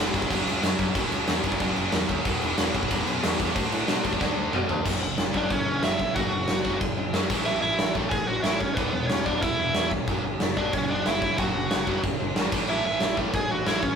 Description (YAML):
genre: punk rock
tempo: 184 BPM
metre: 4/4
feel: straight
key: F# minor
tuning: A4 = 445 Hz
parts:
  - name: distorted electric guitar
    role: riff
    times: 0.0-14.0 s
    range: E2 to D4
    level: -30 LUFS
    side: equal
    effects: distortion
  - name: overdriven picked electric bass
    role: bass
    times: 0.0-13.9 s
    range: E1 to B2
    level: -33 LUFS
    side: equal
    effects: none
  - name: big rock drum kit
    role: drums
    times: 0.1-13.9 s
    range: crash cymbal, kick drum, snare drum, toms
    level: -25 LUFS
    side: equal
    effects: none
  - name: bluesy overdriven lead guitar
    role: melody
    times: 5.4-14.0 s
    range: B3 to G#5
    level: -26 LUFS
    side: right 1 dB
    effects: distortion
room: light reverb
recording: rough rehearsal-room recording, warm saturation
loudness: -23 LUFS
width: side -7 dB against mid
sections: 0.0-4.9 A section; 4.9-14.0 B section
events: drum fill 4.2-4.9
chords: 0.0 F#5; 2.3 E5; 3.6 D5; 4.9 F#5; 7.3 A; 8.8 E5; 10.1 F#5; 12.5 A5